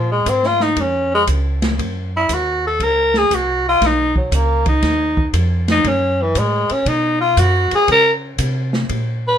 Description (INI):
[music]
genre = jazz, small-group swing and bop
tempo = 118 BPM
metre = 4/4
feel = swing 68% on 8ths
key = unclear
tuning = A4 = 435 Hz
[part]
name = growling tenor saxophone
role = melody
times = 0.0-9.4 s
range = Fb3 to Cb5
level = -15 LUFS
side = left 1 dB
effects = none
[part]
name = upright bass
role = bass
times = 0.0-9.4 s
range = Cb2 to Db3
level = -20 LUFS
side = right 1 dB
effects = none
[part]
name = open jazz drum kit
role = drums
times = 0.3-9.1 s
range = hi-hat, kick drum, ride cymbal, snare drum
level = -24 LUFS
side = left 1 dB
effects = none
[sound]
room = light reverb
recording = minimal, uncompressed stereo recording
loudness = -14 LUFS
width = side -9 dB against mid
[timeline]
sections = 0.0-9.4 A section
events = tenor saxophone solo 0.0-9.4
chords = 0.0 Bbm7; 1.8 Gb5; 3.8 Cb; 5.8 Gbm; 6.9 Cb5; 7.9 Bbmadd9 (rootless)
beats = 0.27 0.78 1.28 | 1.79 2.30 2.80 3.31 | 3.82 4.32 4.83 5.34 | 5.85 6.36 6.87 7.37 | 7.88 8.39 8.90